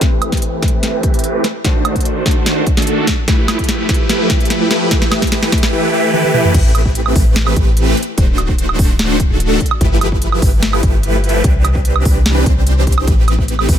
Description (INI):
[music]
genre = future bass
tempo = 147 BPM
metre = 4/4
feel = half-time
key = A minor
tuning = A4 = 440 Hz
[part]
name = supersaw chords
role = riff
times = 0.0-13.8 s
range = Eb3 to C5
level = -16 LUFS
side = right 1 dB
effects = phaser, sidechain pumping, low-pass filter, ping-pong delay
[part]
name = electronic kick drum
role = drums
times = 0.0-13.8 s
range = none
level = -15 LUFS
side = equal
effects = none
[part]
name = trap drum kit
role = drums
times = 0.0-13.8 s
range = crash cymbal, hi-hat, ride cymbal, snare drum, toms, woodblock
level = -19 LUFS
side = right 1 dB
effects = overdrive
[part]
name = warm 808-style bass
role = bass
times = 6.5-13.8 s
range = D1 to C2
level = -15 LUFS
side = equal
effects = sidechain pumping
[sound]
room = digital ambience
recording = none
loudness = -11 LUFS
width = side -10 dB against mid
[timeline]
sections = 0.0-6.5 A section; 6.5-13.8 B section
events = build-up 0.0-6.5; drum fill 0.0-5.7, 6.1-6.5; filter sweep on supersaw synth 0.0-6.5; drop 6.5-13.8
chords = 0.0 Am9; 1.4 D7b9; 3.1 G13; 4.9 Emadd11; 6.5 Am9; 8.0 D7b9; 9.6 G13; 11.4 Cmaj9; 13.1 Am9